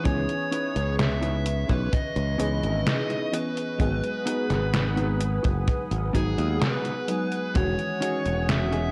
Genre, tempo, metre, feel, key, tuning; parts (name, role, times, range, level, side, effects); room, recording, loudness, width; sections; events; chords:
vaporwave; 64 BPM; 4/4; straight; A4 = 440 Hz
dark smooth lead guitar; melody; 0.0-8.9 s; G#4 to E5; -33 LUFS; equal; overdrive, tape echo
FM electric piano with soft pad layer; accompaniment; 0.0-8.9 s; D#3 to D#5; -34 LUFS; equal; lush chorus
warbly tape-like pad; sustained chords; 0.0-8.9 s; B4 to D#6; -40 LUFS; equal; chorus, built-in reverb
mellow electric guitar; riff; 0.0-8.9 s; B3 to B4; -36 LUFS; equal; analog chorus
modern bright fingered electric bass; bass; 0.1-8.9 s; E1 to D#2; -29 LUFS; equal
detuned 8-bit digital drum machine; drums; 0.1-8.9 s; hi-hat, snare drum; -30 LUFS; equal; overdrive, gated reverb
kick drum; drums; 0.1-7.7 s; -28 LUFS; equal
light reverb, digital ambience; cassette tape; -26 LUFS; mono
0.0-8.9 A section
0.0 C#m9; 3.8 G#m7; 7.6 Emaj13